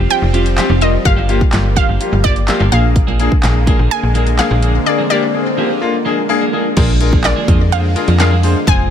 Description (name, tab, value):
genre	dance-pop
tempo	126 BPM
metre	4/4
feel	straight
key	unclear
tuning	A4 = 440 Hz
part	supersaw pad	sustained chords	0.0-8.9 s	D3 to C4	-22 LUFS	right 1 dB	phaser, sidechain pumping
part	twelve-string electric guitar	riff	0.0-8.9 s	F3 to Ab4	-24 LUFS	right 7 dB	lush chorus
part	slap-like FM bass	bass	0.0-8.9 s	F1 to F2	-14 LUFS	equal	sidechain pumping
part	wide unison pluck	melody	0.1-8.9 s	D5 to Ab5	-20 LUFS	moving between left 6 dB and right 9 dB	auto-pan, ping-pong delay
part	clear concert grand piano	accompaniment	0.1-8.8 s	Bb3 to C5	-19 LUFS	left 6 dB	sidechain pumping
part	pop drum kit	drums	0.1-8.8 s	crash cymbal, handclaps, hi-hat, kick drum, snare drum	-16 LUFS	equal	none
part	swell	sound effects	4.6-5.8 s	none	-25 LUFS	left 1 dB	none
room	light reverb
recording	none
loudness	-11 LUFS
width	side -9 dB against mid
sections	0.0-6.8 A section; 6.8-8.9 B section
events	none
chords	0.0 Fsus2; 1.1 Gm7; 2.7 Bb7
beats	0.10 0.58 | 1.05 1.53 2.01 2.48 | 2.96 3.44 3.91 4.39 | 4.86 5.34 5.82 6.29 | 6.77 7.24 7.72 8.20 | 8.67